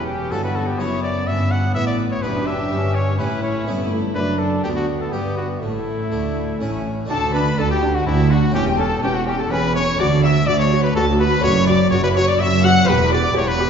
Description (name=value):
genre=classical, baroque-style concerto movement with solo episodes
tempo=125 BPM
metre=3/4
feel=straight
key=D major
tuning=A4 = 440 Hz
part: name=bright trumpet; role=melody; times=0.0-13.7 s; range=E4 to F#5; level=-24 LUFS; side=left 2 dB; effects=none
part: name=rich chamber violin section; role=melody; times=0.0-13.7 s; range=E5 to F#6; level=-28 LUFS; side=left 3 dB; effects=none
part: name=rich chamber violin section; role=second line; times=0.0-13.7 s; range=A3 to F#5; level=-26 LUFS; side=left 3 dB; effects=none
part: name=dark chamber viola section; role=accompaniment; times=0.0-13.7 s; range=A3 to G4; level=-25 LUFS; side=equal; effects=none
part: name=harpsichord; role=accompaniment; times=0.0-13.7 s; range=D2 to G4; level=-28 LUFS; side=equal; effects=none
part: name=rich chamber cello section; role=bass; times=0.0-13.7 s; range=D2 to D3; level=-23 LUFS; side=right 1 dB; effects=none
part: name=rich chamber double bass section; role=bass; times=0.0-13.7 s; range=E1 to D2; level=-22 LUFS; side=right 2 dB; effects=none
room=wet recital hall reverb, RT60 1.8 s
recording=heard from further back in the room, nothing above 7.5 kHz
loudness=-16 LUFS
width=side -7 dB against mid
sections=0.0-7.1 A section; 7.1-13.7 B section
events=none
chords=0.0 C#m7b5/E; 1.3 Em/G; 2.7 A7/G; 4.2 D/F#; 5.1 G; 5.6 Asus4; 6.6 A; 7.1 D; 8.5 A/E; 10.0 D; 11.4 D/F#; 12.9 Em